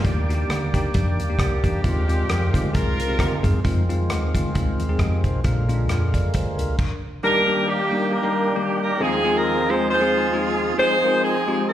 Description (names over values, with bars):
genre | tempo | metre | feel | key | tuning
uptempo gospel | 134 BPM | 4/4 | swing 55% on 8ths | Eb major | A4 = 440 Hz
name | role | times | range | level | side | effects
bell-like tine electric piano | accompaniment | 0.0-11.7 s | Bb2 to Eb5 | -26 LUFS | left 3 dB | fast stereo tremolo, slapback echo
tonewheel organ | sustained chords | 0.0-11.7 s | Eb2 to D5 | -27 LUFS | right 2 dB | slow rotary speaker, overdrive
hollow-body short-scale fingered electric bass | bass | 0.0-6.8 s | Bb1 to Gb2 | -22 LUFS | equal | none
modern studio drum kit | drums | 0.0-6.9 s | crash cymbal, hi-hat, kick drum, rim click | -24 LUFS | equal | none
clear saxophone section | melody | 1.4-3.6, 7.2-11.7 s | Bb3 to C5 | -21 LUFS | equal | slapback echo
room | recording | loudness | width
light reverb | live gig heard through the venue's PA, recital hall reverb | -19 LUFS | side -11 dB against mid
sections
0.0-7.2 A section; 7.2-11.7 B section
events
none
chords
0.0 Ebmaj7; 1.8 Ab6; 3.6 Fm7; 5.4 Bb7; 7.2 Ebmaj7; 9.0 Ab6/Eb; 10.8 Fm7